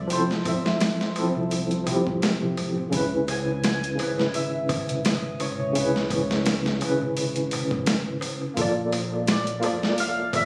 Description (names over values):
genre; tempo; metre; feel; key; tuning
trip hop; 85 BPM; 4/4; swing 56% on 16ths; unclear; A4 = 440 Hz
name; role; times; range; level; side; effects
santur; melody; 0.0-10.5 s; C5 to G#5; -33 LUFS; equal; vintage 12-bit sampler grit, tape echo
tine electric piano; accompaniment; 0.0-10.5 s; C#3 to D5; -28 LUFS; equal; medium tremolo, vintage 12-bit sampler grit, tape echo
round analog bass; bass; 0.0-10.5 s; F1 to C#2; -37 LUFS; equal; none
dusty soul sampler-style drum kit; drums; 0.1-10.5 s; hi-hat, kick drum, snare drum; -29 LUFS; equal; overdrive
darbuka; percussion; 0.1-10.5 s; none; -39 LUFS; equal; none
room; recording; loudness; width
light reverb; recorded on a phone in the room, club reverb, vinyl crackle; -25 LUFS; mono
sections
0.0-10.5 A section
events
none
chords
0.0 Fmaj7; 2.9 C#m7; 8.6 Bbmaj7